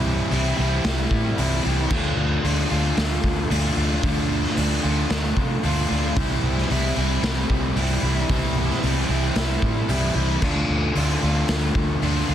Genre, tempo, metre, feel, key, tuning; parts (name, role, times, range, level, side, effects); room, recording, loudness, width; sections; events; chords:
rock, shoegaze and dream pop; 113 BPM; 4/4; straight; C major; A4 = 441 Hz
overdriven semi-hollow guitar; riff; 0.0-12.3 s; C3 to F4; -23 LUFS; equal; lush chorus
vintage muted fingered electric bass; bass; 0.0-12.3 s; C2 to C3; -24 LUFS; equal
raw garage drum kit; drums; 0.3-12.1 s; crash cymbal, hi-hat, kick drum, snare drum; -25 LUFS; equal
small room ambience; dense, heavily limited modern master; -19 LUFS; side -10 dB against mid
0.0-12.3 A section
0.0 C; 1.9 Dm; 6.2 C; 10.4 Dm